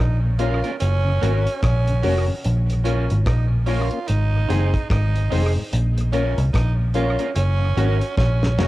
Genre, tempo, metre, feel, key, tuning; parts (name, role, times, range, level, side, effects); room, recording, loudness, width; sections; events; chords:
roots reggae; 73 BPM; 4/4; swing 60% on 16ths; Bb minor; A4 = 441 Hz
raspy tenor saxophone; second line; 0.0-8.7 s; Db4 to F4; -29 LUFS; right 5 dB; cassette tape, tape echo
vintage muted fingered electric bass; bass; 0.0-8.7 s; F1 to C2; -19 LUFS; equal
mellow tonewheel organ; accompaniment; 0.2-8.7 s; Gb2 to Db4; -31 LUFS; left 4 dB; chorus vibrato, cassette tape
electric guitar at the edge of break-up; accompaniment; 0.4-8.7 s; Db4 to C5; -31 LUFS; right 6 dB; cassette tape, tape echo
dark upright piano; stabs; 0.4-8.7 s; C4 to Db5; -29 LUFS; left 5 dB; cassette tape
damped 70s drum kit; drums; 0.4-8.7 s; hi-hat, kick drum, rim click, snare drum; -26 LUFS; equal; cassette tape, tape echo
light reverb, small room reverb; home recording on cassette, lossy compression artefacts; -18 LUFS; side -17 dB against mid
0.0-8.7 A section
drum fill 8.2-8.7
0.0 Bbm; 0.8 Gb; 2.4 Bbm; 4.1 Ab; 5.7 Bbm; 7.4 Gb